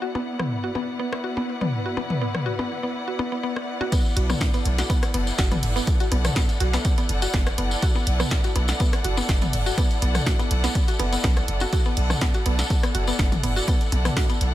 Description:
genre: minimal techno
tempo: 123 BPM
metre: 4/4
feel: swing 53% on 16ths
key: B minor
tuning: A4 = 440 Hz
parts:
  - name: mallet-like synth pluck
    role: riff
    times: 0.0-14.4 s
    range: B3 to F#4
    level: -30 LUFS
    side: equal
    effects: chorus, sidechain pumping, tape echo
  - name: muted studio string section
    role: texture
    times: 0.0-14.5 s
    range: B3 to F#5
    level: -30 LUFS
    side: equal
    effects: sidechain pumping
  - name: techno drum kit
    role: percussion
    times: 0.2-14.1 s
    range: percussion blips, rim click, toms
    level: -30 LUFS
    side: left 2 dB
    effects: overdrive, ping-pong delay
  - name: electronic kick drum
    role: drums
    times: 3.9-14.3 s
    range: none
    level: -23 LUFS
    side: equal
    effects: none
  - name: jazz brush drum kit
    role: drums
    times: 3.9-14.5 s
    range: hi-hat, ride cymbal, snare drum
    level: -38 LUFS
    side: left 3 dB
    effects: high-pass filter on cymbals, high-pass filter on hats, high-pass filter on snare, high-pass filter on room
  - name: punchy analog drum machine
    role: drums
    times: 3.9-14.5 s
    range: hi-hat, snare drum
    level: -30 LUFS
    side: right 1 dB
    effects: none
  - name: tambourine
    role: percussion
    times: 3.9-14.4 s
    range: none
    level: -34 LUFS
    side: left 2 dB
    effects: none
  - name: punchy sub bass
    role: bass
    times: 4.2-14.5 s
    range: F#1 to B1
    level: -24 LUFS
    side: equal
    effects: sidechain pumping
room: small room ambience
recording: none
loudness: -20 LUFS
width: side -14 dB against mid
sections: 0.0-3.9 A section; 3.9-14.5 B section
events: filter sweep on synth arpeggio sound 0.0-3.9; drop 3.9-14.5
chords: 0.0 Bm; 3.9 Bm7

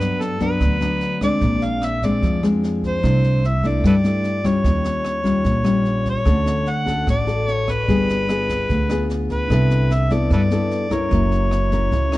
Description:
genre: bossa nova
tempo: 148 BPM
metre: 4/4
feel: straight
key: unclear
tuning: A4 = 440 Hz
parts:
  - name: overdriven harmonica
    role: melody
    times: 0.0-12.2 s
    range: A4 to F#5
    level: -24 LUFS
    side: equal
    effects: none
  - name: nylon-string guitar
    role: accompaniment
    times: 0.0-12.2 s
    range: G2 to A#4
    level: -21 LUFS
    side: left 2 dB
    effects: none
  - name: upright bass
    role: bass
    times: 0.0-12.2 s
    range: F#1 to G2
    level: -22 LUFS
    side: right 1 dB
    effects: none
  - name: jazz brush drum kit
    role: drums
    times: 0.0-12.2 s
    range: kick drum, rim click, snare drum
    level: -26 LUFS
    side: right 1 dB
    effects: none
  - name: bell-like tine electric piano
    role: accompaniment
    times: 9.5-12.2 s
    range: C#4 to E5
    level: -31 LUFS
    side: right 5 dB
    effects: none
room: light reverb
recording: dark, warm production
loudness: -17 LUFS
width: side -17 dB against mid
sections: 0.0-12.2 A section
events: none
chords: 0.0 Gmaj7; 1.4 A#9; 3.0 C69; 4.6 D#9; 6.3 Dmaj7; 7.9 G7b9; 9.5 Cmaj13; 11.1 F#7

